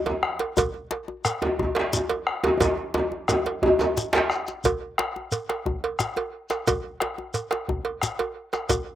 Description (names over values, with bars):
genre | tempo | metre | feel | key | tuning
west african traditional, West African drum ensemble | 118 BPM (dotted quarters) | 12/8 | straight | none | none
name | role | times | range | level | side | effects
cowbell | percussion | 0.1-8.9 s | none | -28 LUFS | right 5 dB | slapback echo
djembe | percussion | 0.1-8.9 s | none | -31 LUFS | left 4 dB | none
djembe | percussion | 0.1-4.3 s | none | -23 LUFS | equal | slapback echo
bombo | percussion | 0.2-8.9 s | none | -29 LUFS | left 2 dB | slapback echo
shekere | percussion | 0.6-8.9 s | none | -29 LUFS | left 2 dB | none
room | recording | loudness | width
light reverb | recorded outdoors, with no room sound | -23 LUFS | side -12 dB against mid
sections
0.0-4.6 A section; 4.6-9.0 B section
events
drum fill 2.6-4.6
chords
none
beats
0.06 | 0.57 1.08 1.59 2.10 | 2.61 3.12 3.62 4.13 | 4.64 5.15 5.66 6.17 | 6.67 7.18 7.69 8.20 | 8.70